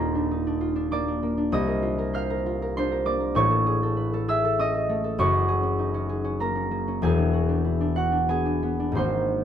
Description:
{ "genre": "classical, solo harp piece", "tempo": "97 BPM", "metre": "3/4", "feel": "rubato", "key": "unclear", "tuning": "A4 = 442 Hz", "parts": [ { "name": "concert harp", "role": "solo", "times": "0.0-9.4 s", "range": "D#1 to F6", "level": "-22 LUFS", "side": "equal", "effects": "none" } ], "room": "light reverb", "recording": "minimal, uncompressed stereo recording", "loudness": "-22 LUFS", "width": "side -9 dB against mid", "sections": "0.0-9.4 A section", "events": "none", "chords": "0.0 D#sus2; 1.5 Cm11; 3.4 Amaj7; 5.2 F#add9; 7.0 E9" }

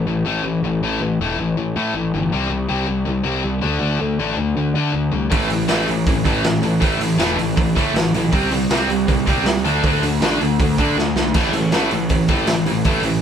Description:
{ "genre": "punk rock", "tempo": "160 BPM", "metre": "4/4", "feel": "straight", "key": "A minor", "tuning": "A4 = 440 Hz", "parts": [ { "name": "distorted electric guitar", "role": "riff", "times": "0.0-13.2 s", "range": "A2 to D4", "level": "-21 LUFS", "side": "left 5 dB", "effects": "overdrive" }, { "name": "fuzz picked electric bass", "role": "bass", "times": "0.0-13.2 s", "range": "E1 to D3", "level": "-23 LUFS", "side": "right 1 dB", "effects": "overdrive" }, { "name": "tight distorted guitar", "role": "riff", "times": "5.3-13.2 s", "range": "A2 to D4", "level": "-21 LUFS", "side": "right 6 dB", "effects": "distortion" }, { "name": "raw garage drum kit", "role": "drums", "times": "5.3-13.1 s", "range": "crash cymbal, hi-hat, kick drum, snare drum", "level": "-20 LUFS", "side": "right 1 dB", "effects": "none" } ], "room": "light reverb", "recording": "band playing live in one room", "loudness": "-16 LUFS", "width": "side -8 dB against mid", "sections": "0.0-13.2 A section", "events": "drum fill 11.0-11.3", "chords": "0.0 A5; 2.3 C5; 3.6 D5; 5.3 A5; 8.3 C5; 9.6 D5; 11.3 A5" }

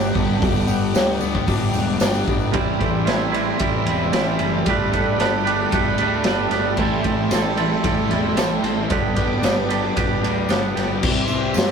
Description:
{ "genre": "rock, shoegaze and dream pop", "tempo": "113 BPM", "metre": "4/4", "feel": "straight", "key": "G major", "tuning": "A4 = 441 Hz", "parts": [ { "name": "chorused pulse-width pad", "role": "sustained chords", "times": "0.0-11.7 s", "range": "G4 to D6", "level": "-28 LUFS", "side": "equal", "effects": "none" }, { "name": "twangy electric guitar", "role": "arpeggios", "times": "0.0-11.7 s", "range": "E3 to A4", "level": "-32 LUFS", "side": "left 6 dB", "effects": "none" }, { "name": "thick fuzz guitar", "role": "riff", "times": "0.0-11.7 s", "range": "G2 to C4", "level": "-25 LUFS", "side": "left 6 dB", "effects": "distortion" }, { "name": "twangy electric guitar", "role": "riff", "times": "0.0-11.0 s", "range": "G2 to B4", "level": "-23 LUFS", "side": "right 7 dB", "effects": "none" }, { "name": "fuzz fingered electric bass", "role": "bass", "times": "0.0-11.7 s", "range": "E1 to G2", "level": "-27 LUFS", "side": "equal", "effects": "overdrive" }, { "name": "tambourine", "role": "percussion", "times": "0.0-2.5, 7.3-11.7 s", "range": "none", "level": "-37 LUFS", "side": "right 6 dB", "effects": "none" }, { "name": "raw garage drum kit", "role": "drums", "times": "0.2-11.7 s", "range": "crash cymbal, hi-hat, kick drum, ride cymbal, snare drum", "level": "-22 LUFS", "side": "equal", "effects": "none" } ], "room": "moderate stone room reverb, RT60 1.0 s", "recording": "rough rehearsal-room recording", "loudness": "-17 LUFS", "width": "side -6 dB against mid", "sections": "0.0-2.5 A section; 2.5-11.0 B section", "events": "none", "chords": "0.0 Gmaj7; 2.5 Am7; 4.7 Gadd9; 6.8 Am7; 8.9 G; 11.0 C" }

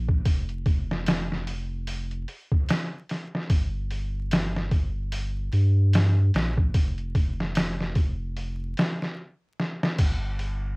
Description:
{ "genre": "trip hop", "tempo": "74 BPM", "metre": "4/4", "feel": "swing 58% on 16ths", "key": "G minor", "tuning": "A4 = 440 Hz", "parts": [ { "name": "warm sub bass", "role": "bass", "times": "0.0-10.8 s", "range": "F1 to G2", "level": "-26 LUFS", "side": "equal", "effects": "none" }, { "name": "trip hop sampler-style drum kit", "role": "drums", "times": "0.1-10.6 s", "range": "crash cymbal, hi-hat, kick drum, snare drum", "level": "-24 LUFS", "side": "equal", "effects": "none" } ], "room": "little or no reverb", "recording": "home recording on cassette, vinyl crackle", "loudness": "-23 LUFS", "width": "side -38 dB against mid", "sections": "0.0-10.0 A section", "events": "drum fill 9.6-10.0", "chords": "none" }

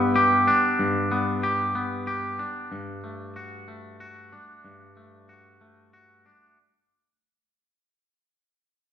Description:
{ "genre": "rock", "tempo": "93 BPM", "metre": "3/4", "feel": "straight", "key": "unclear", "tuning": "A4 = 442 Hz", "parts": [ { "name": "twangy electric guitar", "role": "arpeggios", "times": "0.0-6.6 s", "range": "G2 to G4", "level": "-23 LUFS", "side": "left 1 dB", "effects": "none" } ], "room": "wet large studio reverb, RT60 1.2 s", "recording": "band playing live in one room", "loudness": "-21 LUFS", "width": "side -10 dB against mid", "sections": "0.0-6.6 A section", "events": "fade-out 0.0-6.6", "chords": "0.0 G; 2.7 D/G" }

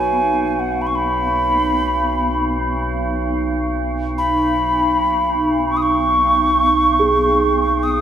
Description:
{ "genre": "world meditative, free-time meditation music", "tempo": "free time", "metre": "none", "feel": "none", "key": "B major pentatonic", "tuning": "A4 = 440 Hz", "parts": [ { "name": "mellow alto ocarina", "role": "melody", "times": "0.0-8.0 s", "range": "F#5 to D#6", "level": "-17 LUFS", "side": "equal", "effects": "diffuse ambient delay" }, { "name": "icy glass pad", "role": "drone", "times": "0.0-8.0 s", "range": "B1", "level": "-20 LUFS", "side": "right 1 dB", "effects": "chorus, built-in reverb" }, { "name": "bronze singing bowl", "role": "texture", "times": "0.0-8.0 s", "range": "D#4 to C#5", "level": "-25 LUFS", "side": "right 1 dB", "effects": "none" } ], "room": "wet echo chamber reverb, RT60 2.7 s", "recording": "none", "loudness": "-15 LUFS", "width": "side -9 dB against mid", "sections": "0.0-8.0 A section", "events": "none", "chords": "none" }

